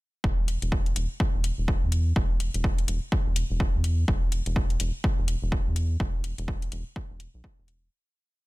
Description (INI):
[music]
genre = minimal techno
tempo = 125 BPM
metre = 4/4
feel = swing 59% on 16ths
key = unclear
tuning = A4 = 438 Hz
[part]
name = rubbery square bass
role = bass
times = 0.2-7.9 s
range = E1 to E2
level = -27 LUFS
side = equal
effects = tube saturation, sidechain pumping
[part]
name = electronic kick drum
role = drums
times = 0.2-7.6 s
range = none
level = -27 LUFS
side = equal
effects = overdrive, small room ambience
[part]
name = electronic hi-hat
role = drums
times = 0.5-7.8 s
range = none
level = -36 LUFS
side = left 4 dB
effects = small room ambience
[sound]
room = digital ambience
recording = dense, heavily limited modern master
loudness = -24 LUFS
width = side -20 dB against mid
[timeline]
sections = 0.2-7.9 groove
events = fade-out 5.4-7.9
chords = none